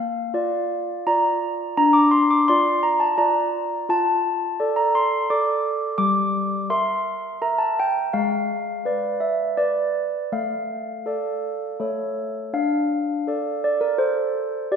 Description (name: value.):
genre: classical, tune for handbells.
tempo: 84 BPM.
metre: 3/4.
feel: straight.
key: D minor from 3.9 s.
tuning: A4 = 440 Hz.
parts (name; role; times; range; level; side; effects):
handbells; solo; 0.0-14.8 s; G3 to D6; -20 LUFS; equal; none.
room: wet scoring stage reverb, RT60 1.9 s.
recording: recorded in a church or concert hall.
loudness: -20 LUFS.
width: side -7 dB against mid.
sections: 0.0-12.5 A section; 12.5-14.8 B section.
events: none.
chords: 0.0 Bb; 1.8 Dm7; 3.9 Dm/F; 6.0 Em7b5/G; 8.1 G#dim7; 10.3 Dm/A; 11.8 A; 12.5 Dm.